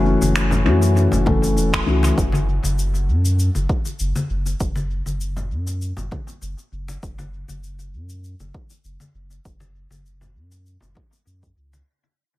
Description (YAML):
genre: organic downtempo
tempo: 99 BPM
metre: 4/4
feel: straight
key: F# minor pentatonic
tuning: A4 = 440 Hz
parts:
  - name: felt-muted upright piano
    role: accompaniment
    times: 0.0-2.2 s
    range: E3 to A4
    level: -20 LUFS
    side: left 3 dB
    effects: sidechain pumping, analog delay, shimmer reverb
  - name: warm sub bass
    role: bass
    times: 0.0-11.8 s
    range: E1 to F#2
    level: -21 LUFS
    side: equal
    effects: sidechain pumping
  - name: electronic shaker and finger snaps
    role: drums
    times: 0.2-11.8 s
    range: none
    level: -28 LUFS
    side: equal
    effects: analog delay
  - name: congas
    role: percussion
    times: 0.2-11.8 s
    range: none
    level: -29 LUFS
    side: left 2 dB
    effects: analog delay
  - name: electronic kick drum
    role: drums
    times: 1.3-11.5 s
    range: none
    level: -24 LUFS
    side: equal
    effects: none
room: light reverb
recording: echo-heavy mix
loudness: -18 LUFS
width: side -17 dB against mid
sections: 0.0-11.9 A section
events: fade-out 0.0-11.9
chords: 0.0 F#m7